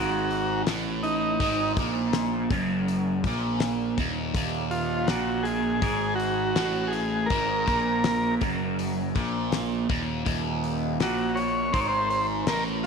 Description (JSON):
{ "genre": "psychedelic rock", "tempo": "81 BPM", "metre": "4/4", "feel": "straight", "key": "unclear", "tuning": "A4 = 442 Hz", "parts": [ { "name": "combo organ", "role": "melody", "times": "0.0-12.9 s", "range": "Eb4 to Db5", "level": "-27 LUFS", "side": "right 2 dB", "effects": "tape echo" }, { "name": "biting overdriven guitar", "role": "riff", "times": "0.0-12.9 s", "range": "Eb2 to Bb2", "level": "-27 LUFS", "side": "right 1 dB", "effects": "phaser" }, { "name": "fuzz picked electric bass", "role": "bass", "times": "0.0-12.9 s", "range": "Eb1 to Bb1", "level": "-33 LUFS", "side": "equal", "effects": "overdrive" }, { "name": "damped 70s drum kit", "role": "drums", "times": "0.3-12.9 s", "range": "hi-hat, kick drum, snare drum", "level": "-30 LUFS", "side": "left 4 dB", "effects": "none" } ], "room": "light reverb", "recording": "1960s-style stereo", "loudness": "-24 LUFS", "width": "side -5 dB against mid", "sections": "0.0-12.9 A section", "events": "none", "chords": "0.0 Ebm" }